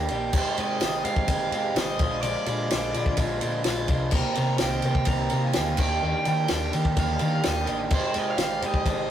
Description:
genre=indie rock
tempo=127 BPM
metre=4/4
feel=straight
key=unclear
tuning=A4 = 441 Hz
part: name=string machine, violins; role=sustained chords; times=0.0-9.1 s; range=C3 to Bb4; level=-38 LUFS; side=left 2 dB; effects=none
part: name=electric guitar through a small old amp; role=riff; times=0.0-9.1 s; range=Eb3 to G4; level=-27 LUFS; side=right 2 dB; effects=none
part: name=hollow-body short-scale picked electric bass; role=bass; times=0.0-9.1 s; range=Ab1 to Eb3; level=-30 LUFS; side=left 1 dB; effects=none
part: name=compact cocktail drum kit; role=drums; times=0.1-9.0 s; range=crash cymbal, kick drum, ride cymbal, snare drum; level=-27 LUFS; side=left 1 dB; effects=none
part: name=overdriven electric guitar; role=melody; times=0.4-9.1 s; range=C5 to Bb5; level=-32 LUFS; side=equal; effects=phaser
part: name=tambourine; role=percussion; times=0.8-8.5 s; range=none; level=-46 LUFS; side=left 5 dB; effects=none
part: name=mellow tine electric piano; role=second line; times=4.1-9.1 s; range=Ab4 to G5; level=-42 LUFS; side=left 1 dB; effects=none
room=light reverb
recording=rough rehearsal-room recording, tube saturation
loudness=-22 LUFS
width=side -10 dB against mid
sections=0.0-9.1 A section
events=none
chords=0.3 Abmaj7; 2.0 Bb7; 4.1 Cm7; 5.8 Ebmaj7; 7.9 Abmaj7

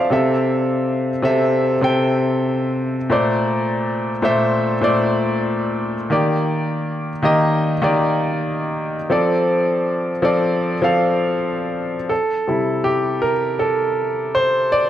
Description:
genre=R&B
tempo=80 BPM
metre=4/4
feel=swing 58% on 16ths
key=C mixolydian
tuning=A4 = 440 Hz
part: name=clear grand piano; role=solo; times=0.0-14.9 s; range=Bb2 to C6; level=-16 LUFS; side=equal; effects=none
room=light reverb, studio reverb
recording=none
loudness=-17 LUFS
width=side -11 dB against mid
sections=0.0-12.1 A section; 12.1-14.9 B section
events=grand piano solo 12.1-14.9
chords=0.1 C6; 3.1 Bbmaj9; 6.1 Ebmaj7; 9.1 F6; 12.1 C6

